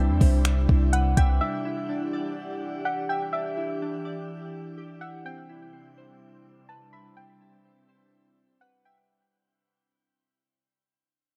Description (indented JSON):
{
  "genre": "hip hop, atmospheric cloud-rap",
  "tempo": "125 BPM",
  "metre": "4/4",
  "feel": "half-time",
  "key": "unclear",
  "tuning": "A4 = 442 Hz",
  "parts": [
    { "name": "soft round pluck", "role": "melody", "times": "0.0-9.1 s", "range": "E5 to B5", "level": "-35 LUFS", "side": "equal", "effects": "chorus, low-pass filter, delay" },
    { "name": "glassy FM pad", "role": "sustained chords", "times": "0.0-9.1 s", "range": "C3 to F#5", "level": "-36 LUFS", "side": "equal", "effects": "ensemble chorus, built-in reverb, sidechain pumping" },
    { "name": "glassy digital keys", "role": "arpeggios", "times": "0.0-9.1 s", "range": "C4 to E5", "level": "-39 LUFS", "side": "equal", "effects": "chorus, phaser, low-pass filter, delay" },
    { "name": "warm 808-style bass", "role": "bass", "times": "0.0-1.4 s", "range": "C2 to E2", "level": "-24 LUFS", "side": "equal", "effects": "none" },
    { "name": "smooth R&B drum kit", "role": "drums", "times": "0.2-1.3 s", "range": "finger snaps, hi-hat, kick drum", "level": "-24 LUFS", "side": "equal", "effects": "none" }
  ],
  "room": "light reverb",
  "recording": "none",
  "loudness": "-26 LUFS",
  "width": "mono",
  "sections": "0.0-9.1 A section",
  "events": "fade-out 0.0-9.1",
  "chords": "0.0 Cmaj7; 1.4 Em7; 5.3 Cmaj7",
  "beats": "0.45 0.93 | 1.41 1.89 2.37 2.85 | 3.33 3.81 4.29 4.77 | 5.25 5.73 6.21 6.69 | 7.17 7.65 8.13 8.61"
}